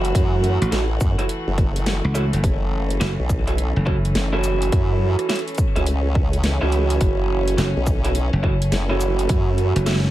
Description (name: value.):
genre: glitch hop.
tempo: 105 BPM.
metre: 4/4.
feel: swing 64% on 16ths.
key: F# minor.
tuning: A4 = 440 Hz.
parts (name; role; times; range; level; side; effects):
warm chamber string section; sustained chords; 0.0-10.1 s; E3 to F#4; -28 LUFS; left 2 dB; sidechain pumping.
electric guitar through a small old amp; stabs; 0.0-10.0 s; E4 to C#5; -25 LUFS; right 5 dB; vintage 12-bit sampler grit, sidechain pumping, ping-pong delay.
formant-sweep wobble bass; bass; 0.0-9.7 s; F#1 to F#2; -21 LUFS; equal; chorus.
dubstep drum kit; drums; 0.0-10.1 s; hi-hat, rim click, shaker, snare drum; -27 LUFS; equal; none.
electronic kick drum; drums; 0.1-9.4 s; none; -21 LUFS; equal; none.
slap bass; bass; 0.6-4.1, 7.6-10.1 s; F#1 to C#2; -20 LUFS; equal; none.
room: digital ambience.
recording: vinyl crackle.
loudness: -18 LUFS.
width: side -14 dB against mid.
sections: 0.0-10.1 A section.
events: none.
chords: 0.0 F#m7.